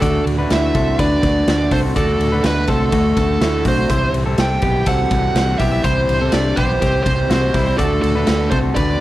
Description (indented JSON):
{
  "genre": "jangly indie pop",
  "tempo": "124 BPM",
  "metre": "4/4",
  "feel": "straight",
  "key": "unclear",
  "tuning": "A4 = 440 Hz",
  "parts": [
    { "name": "dark smooth lead guitar", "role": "melody", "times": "0.0-9.0 s", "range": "A4 to G5", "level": "-20 LUFS", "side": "right 2 dB", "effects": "overdrive, slapback echo" },
    { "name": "vibraphone with medium hard mallets", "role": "second line", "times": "0.0-9.0 s", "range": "A3 to G4", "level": "-25 LUFS", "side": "left 4 dB", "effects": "none" },
    { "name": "raw garage guitar", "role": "accompaniment", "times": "0.0-9.0 s", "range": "C3 to G4", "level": "-23 LUFS", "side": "right 4 dB", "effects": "overdrive, spring reverb" },
    { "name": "semi-hollow electric guitar", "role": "arpeggios", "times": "0.0-9.0 s", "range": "G3 to D5", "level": "-23 LUFS", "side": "left 3 dB", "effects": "none" },
    { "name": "vintage muted fingered electric bass", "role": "bass", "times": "0.0-9.0 s", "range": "B1 to D2", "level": "-20 LUFS", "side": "equal", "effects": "none" },
    { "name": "raw garage drum kit", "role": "drums", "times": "0.0-8.9 s", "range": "hi-hat, kick drum, ride cymbal, snare drum", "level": "-21 LUFS", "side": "equal", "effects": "none" }
  ],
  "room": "little or no reverb",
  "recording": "none",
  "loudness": "-14 LUFS",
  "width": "side -15 dB against mid",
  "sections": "0.0-9.0 A section",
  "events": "none",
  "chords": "0.0 D; 3.9 C; 7.8 D"
}